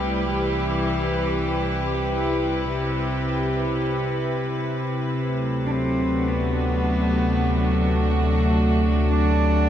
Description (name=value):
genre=ambient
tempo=55 BPM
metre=4/4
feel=straight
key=D mixolydian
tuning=A4 = 441 Hz
part: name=warm cello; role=melody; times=0.0-9.7 s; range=E3 to D4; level=-26 LUFS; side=right 1 dB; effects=diffuse ambient delay
part: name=warm studio string section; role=sustained chords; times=0.0-9.7 s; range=C3 to B4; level=-22 LUFS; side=equal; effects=none
part: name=round analog bass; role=bass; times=0.0-9.7 s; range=C2 to D2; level=-25 LUFS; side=equal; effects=none
room=wet plate reverb, RT60 3.4 s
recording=dreamy mix soaked in reverb, cassette tape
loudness=-20 LUFS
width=side -10 dB against mid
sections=0.0-9.7 A section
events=fade-in on analog synth bass 0.0-9.7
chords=0.0 Cmaj7; 4.7 D7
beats=| 0.29 1.38 2.47 3.56 | 4.65 5.74 6.83 7.92 | 9.02